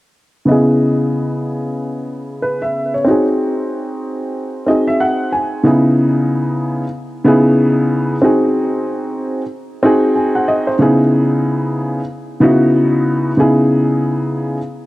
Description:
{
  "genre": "hip hop",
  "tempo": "93 BPM",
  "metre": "4/4",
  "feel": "swing 60% on 16ths",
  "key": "C# minor",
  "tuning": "A4 = 443 Hz",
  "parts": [
    { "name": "dark upright piano", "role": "solo", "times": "0.5-14.6 s", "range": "C#3 to G#5", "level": "-13 LUFS", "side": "equal", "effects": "none" }
  ],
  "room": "light reverb",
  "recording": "dark, warm production",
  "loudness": "-13 LUFS",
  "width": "side -18 dB against mid",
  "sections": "0.5-5.6 A section; 5.6-14.9 B section",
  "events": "upright piano fill 4.4-5.6",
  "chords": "0.5 C#m7; 3.1 G#7; 5.6 C#m7; 8.2 G#7; 10.8 C#m7"
}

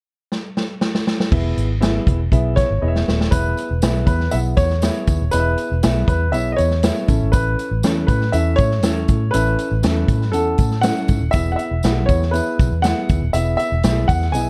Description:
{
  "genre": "uptempo 1960s-style soul",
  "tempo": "120 BPM",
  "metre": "4/4",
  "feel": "straight",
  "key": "E major",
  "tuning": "A4 = 440 Hz",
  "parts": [
    { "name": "swinging big-band drum kit", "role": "drums", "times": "0.3-14.5 s", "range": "crash cymbal, hi-hat, kick drum, snare drum", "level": "-22 LUFS", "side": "equal", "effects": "none" },
    { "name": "warm grand piano", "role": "accompaniment", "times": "1.3-14.5 s", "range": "B3 to F#5", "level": "-27 LUFS", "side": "equal", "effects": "none" },
    { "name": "vintage muted fingered electric bass", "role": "bass", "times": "1.3-14.5 s", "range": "D#1 to A2", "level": "-22 LUFS", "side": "equal", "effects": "none" },
    { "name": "warm baby grand piano", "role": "melody", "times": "2.6-14.5 s", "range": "A4 to G#5", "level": "-25 LUFS", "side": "equal", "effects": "none" },
    { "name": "tambourine", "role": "percussion", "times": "3.3-14.5 s", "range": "none", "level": "-41 LUFS", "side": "equal", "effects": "none" }
  ],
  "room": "light reverb",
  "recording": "dark, warm production",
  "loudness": "-18 LUFS",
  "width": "mono",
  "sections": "0.0-1.3 A section; 1.3-3.3 B section; 3.3-14.5 C section",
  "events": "drum fill 0.3-1.3, 2.8-3.3",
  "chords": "0.0 N.C.; 1.3 E; 7.1 A; 11.3 E"
}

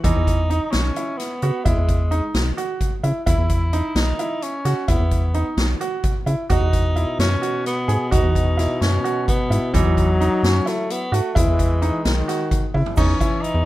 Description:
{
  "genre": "progressive instrumental, band music in an uneven meter",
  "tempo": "260 BPM (eighths)",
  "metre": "7/8",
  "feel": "straight",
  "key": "E major",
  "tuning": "A4 = 444 Hz",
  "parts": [
    { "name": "breathy tenor saxophone", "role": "melody", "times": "0.0-13.7 s", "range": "G#3 to E4", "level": "-27 LUFS", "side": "equal", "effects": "plate reverb, ping-pong delay" },
    { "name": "clear trombone", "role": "second line", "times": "0.0, 6.5-13.7 s", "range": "B2 to F#3", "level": "-25 LUFS", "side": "left 2 dB", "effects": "plate reverb" },
    { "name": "clear baby grand piano", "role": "arpeggios", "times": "0.0-13.5 s", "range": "E3 to G#4", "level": "-25 LUFS", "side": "right 3 dB", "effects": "plate reverb" },
    { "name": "rubbery square bass", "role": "bass", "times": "0.0-13.6 s", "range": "B1 to C#3", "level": "-19 LUFS", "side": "equal", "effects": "none" },
    { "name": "street-band drum kit", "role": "drums", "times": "0.0-13.5 s", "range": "crash cymbal, hi-hat, kick drum, snare drum, toms", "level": "-23 LUFS", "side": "equal", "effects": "none" },
    { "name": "egg shaker", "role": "percussion", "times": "13.0-13.2 s", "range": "none", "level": "-39 LUFS", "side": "right 6 dB", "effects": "none" }
  ],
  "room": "light reverb",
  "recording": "rough home demo mix",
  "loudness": "-18 LUFS",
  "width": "side -16 dB against mid",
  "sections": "0.0-13.0 A section",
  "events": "drum fill 12.7",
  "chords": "0.0 Emaj7(no3); 6.5 Bsus2/E; 11.4 Emaj7; 13.0 Emaj7(no3)"
}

